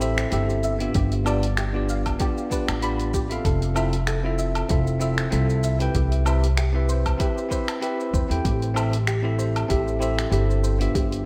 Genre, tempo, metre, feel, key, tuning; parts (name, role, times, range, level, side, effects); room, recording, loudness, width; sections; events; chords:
sunset chillout; 96 BPM; 4/4; swing 55% on 16ths; A4 = 440 Hz
bell-like tine electric piano; accompaniment; 0.0-11.2 s; B3 to G5; -29 LUFS; equal; diffuse ambient delay
soft round pluck; arpeggios; 0.0-11.1 s; G4 to B5; -34 LUFS; equal; ensemble chorus, diffuse ambient delay
upright bass; bass; 0.0-11.3 s; F1 to E2; -26 LUFS; equal; tube saturation
deep house drum kit; drums; 0.0-11.2 s; finger snaps, hi-hat, shaker, woodblock; -34 LUFS; equal
electronic kick drum; drums; 1.0-11.1 s; -28 LUFS; equal
moderate lush hall reverb, RT60 1.9 s; dreamy mix soaked in reverb; -23 LUFS; mono
0.0-11.3 A section
0.0 G7; 3.5 Fmaj7; 6.0 Cmaj7; 8.4 G7